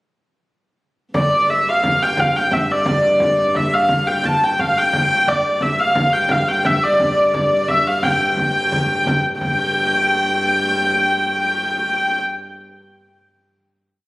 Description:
medieval dance; 116 BPM (dotted quarters); 6/8; straight; A4 = 440 Hz
rich viola da gamba; drone; 1.1-12.3 s; G2; -27 LUFS; equal
frame drum; percussion; 1.1-9.6 s; -23 LUFS; equal
rich hurdy-gurdy; melody; 1.2-12.2 s; D5 to A5; -16 LUFS; equal
moderate scoring stage reverb, RT60 1.8 s; recorded on a phone in the room, studio ambience; -15 LUFS; side -19 dB against mid
1.1-9.4 A section; 9.4-11.5 final note

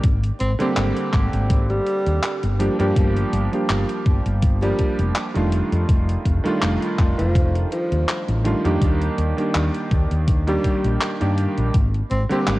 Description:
vaporwave; 82 BPM; 4/4; swing 55% on 16ths; A4 = 437 Hz
clear electric grand piano; accompaniment; 0.0-12.6 s; D3 to G4; -23 LUFS; right 1 dB; lush chorus, tape echo
woody fretless electric bass; bass; 0.0-12.6 s; F1 to G2; -21 LUFS; equal
detuned 8-bit digital drum machine; drums; 0.0-12.6 s; handclaps, hi-hat; -28 LUFS; equal
electronic kick drum; drums; 0.0-11.9 s; -19 LUFS; equal
clear tenor saxophone; melody; 0.4-12.4 s; F3 to C4; -28 LUFS; equal; tape echo
light reverb, digital ambience; worn, warbling old tape, cassette tape, warbly pitch drift; -18 LUFS; side -18 dB against mid
0.0-12.6 A section
0.0 Abmaj9#11; 2.6 F13; 8.8 Ebmaj7; 11.7 Abmaj9#11

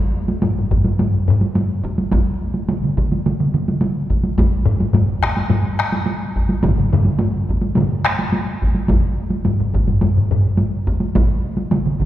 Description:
japanese traditional, taiko drum ensemble; 106 BPM; 4/4; straight
solo taiko drums; percussion; 0.3-11.8 s; -21 LUFS; right 1 dB
taiko ensemble; percussion; 0.4-10.4 s; -18 LUFS; left 2 dB
taiko ensemble; percussion; 0.7-12.1 s; -21 LUFS; equal
taiko ensemble; percussion; 2.7-8.2, 11.7-12.1 s; -22 LUFS; right 2 dB
wet concert hall reverb, RT60 2.3 s; heard from further back in the room; -16 LUFS; side -13 dB against mid
0.0-12.1 A section

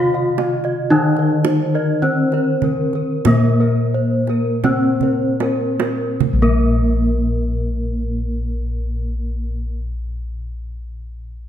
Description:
Javanese gamelan; 36-61 BPM; 4/4; straight; A4 = 440 Hz
gamelan-type bronze metallophone; melody; 0.0-9.8 s; Bb3 to F4+25c; -20 LUFS; equal
gamelan-type bronze metallophone; accompaniment; 0.0-9.8 s; C3+30c to Bb3; -23 LUFS; equal
gamelan-type bossed gongs; arpeggios; 0.0-9.8 s; Bb4 to F5+25c; -27 LUFS; left 6 dB
gamelan-type bronze metallophone; arpeggios; 0.0-9.8 s; Bb4 to F5+25c; -26 LUFS; right 3 dB
gamelan-type bossed gongs; bass; 0.0-9.7 s; Bb1 to Eb4-35c; -21 LUFS; left 1 dB
kendang; percussion; 0.4-7.0 s; -25 LUFS; right 7 dB
moderate recital hall reverb, RT60 1.6 s; dark, warm production; -16 LUFS; side -10 dB against mid
0.0-6.2 A section; 6.2-11.5 B section
slowing down 0.0-6.2; drum fill 5.0-6.2

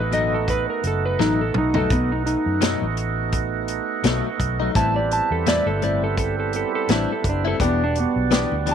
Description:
straight-eighth soul blues; 84 BPM; 4/4; swing 56% on 16ths; A4 = 441 Hz
clean lap steel guitar; melody; 0.0-8.7 s; B3 to A5; -23 LUFS; equal
tonewheel organ; accompaniment; 0.0-8.7 s; G3 to F#4; -26 LUFS; right 11 dB; overdrive, slow rotary speaker
vintage muted fingered electric bass; bass; 0.0-8.7 s; E1 to F#2; -25 LUFS; equal
direct-recorded clean electric guitar; stabs; 0.1-8.7 s; A2 to G4; -26 LUFS; left 10 dB
warm soul drum kit; drums; 0.1-8.7 s; hi-hat, kick drum, snare drum, toms; -24 LUFS; equal
moderate spring reverb, RT60 2.0 s; 1960s-style stereo with parts hard left and right; -19 LUFS; side -8 dB against mid
0.0-8.7 A section
electric slide guitar solo 0.0-8.7; drum fill 1.2-1.9
0.0 B7; 4.8 Am7; 7.6 Em7

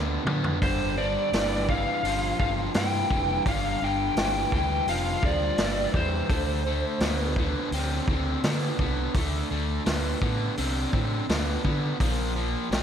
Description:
blues rock power trio and southern rock; 84 BPM; 4/4; straight; D minor; A4 = 440 Hz
distorted electric guitar; riff; 0.0-12.8 s; G2 to C4; -29 LUFS; equal; distortion
overdriven fingered electric bass; bass; 0.0-12.8 s; F1 to D3; -30 LUFS; equal
vintage drum kit; drums; 0.3-12.8 s; hi-hat, kick drum, snare drum, toms; -29 LUFS; equal
lead guitar through a small cranked amp; melody; 0.6-7.3 s; C5 to G5; -28 LUFS; left 1 dB; overdrive, slapback echo
moderate concert hall reverb, RT60 1.8 s, small room ambience; big arena sound; -24 LUFS; side -8 dB against mid
0.0-12.8 A section
drum fill 0.0-0.6
0.0 N.C.; 0.6 G5; 6.3 D5; 12.0 Bb5

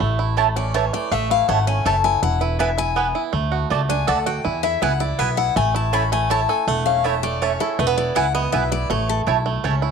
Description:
bluegrass; 162 BPM; 3/4; straight; A major; A4 = 439 Hz
picked steel-string acoustic guitar; accompaniment; 0.0-9.2 s; A4 to B5; -22 LUFS; left 13 dB
bluegrass banjo; arpeggios; 0.0-9.9 s; E3 to A4; -24 LUFS; right 10 dB; tape echo
upright bass; bass; 0.0-9.9 s; E1 to E2; -23 LUFS; left 1 dB
mandolin; stabs; 0.4-9.7 s; A3 to A5; -23 LUFS; right 10 dB
moderate spring reverb, RT60 1.1 s; 1960s-style stereo with parts hard left and right; -18 LUFS; side -6 dB against mid
0.0-1.1 A section; 1.1-9.9 A section
steel-string acoustic guitar solo 0.0-9.9
0.0 A; 2.2 E; 3.3 D; 4.5 E; 5.6 A; 7.8 E; 8.9 A

